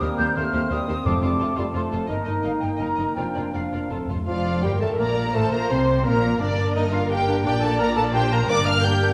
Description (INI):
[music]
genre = quick classical-period movement for symphony orchestra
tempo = 171 BPM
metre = 3/4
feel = rubato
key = Bb major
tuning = A4 = 441 Hz
[part]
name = rich symphonic violin section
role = melody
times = 0.0-9.1 s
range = C5 to G6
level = -32 LUFS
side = equal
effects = none
[part]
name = mellow clarinet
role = second line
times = 0.0-9.1 s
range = A3 to C5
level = -33 LUFS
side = equal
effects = none
[part]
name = mellow cor anglais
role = second line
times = 0.0-9.1 s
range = D4 to G5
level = -33 LUFS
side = equal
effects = none
[part]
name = rich studio violin section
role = second line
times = 0.0-9.1 s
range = D4 to G5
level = -37 LUFS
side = equal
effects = none
[part]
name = small flute group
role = second line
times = 0.0-9.1 s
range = D5 to G6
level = -32 LUFS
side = equal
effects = none
[part]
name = mellow bassoon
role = accompaniment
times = 0.0-9.1 s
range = Eb3 to C4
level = -33 LUFS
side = equal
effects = none
[part]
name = rich studio viola section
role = accompaniment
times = 0.0-9.1 s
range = Eb4 to D5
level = -33 LUFS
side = equal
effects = none
[part]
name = mellow French horn section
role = sustained chords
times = 0.0-9.1 s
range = F3 to Eb4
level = -32 LUFS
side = equal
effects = none
[part]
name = rich studio cello section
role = bass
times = 0.0-8.8 s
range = Eb2 to C3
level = -30 LUFS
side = equal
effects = none
[part]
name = warm studio double bass section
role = bass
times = 0.0-8.8 s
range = F1 to Eb2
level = -31 LUFS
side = equal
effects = none
[part]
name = timpani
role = percussion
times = 1.1-1.5, 3.9-4.2 s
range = F2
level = -33 LUFS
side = equal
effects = none
[sound]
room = wet concert hall reverb, RT60 1.7 s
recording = none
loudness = -22 LUFS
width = mono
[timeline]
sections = 0.0-4.3 A section; 4.3-9.1 A section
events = timpani fill 3.9-4.3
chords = 0.0 Cm7/Eb; 1.1 F; 2.1 Eb/G; 2.8 Ebm/Gb; 3.2 Bb/F; 3.9 F; 4.3 Bb/F; 5.4 Bbsus2; 6.4 Gm; 7.5 Bbmaj13; 8.5 Gm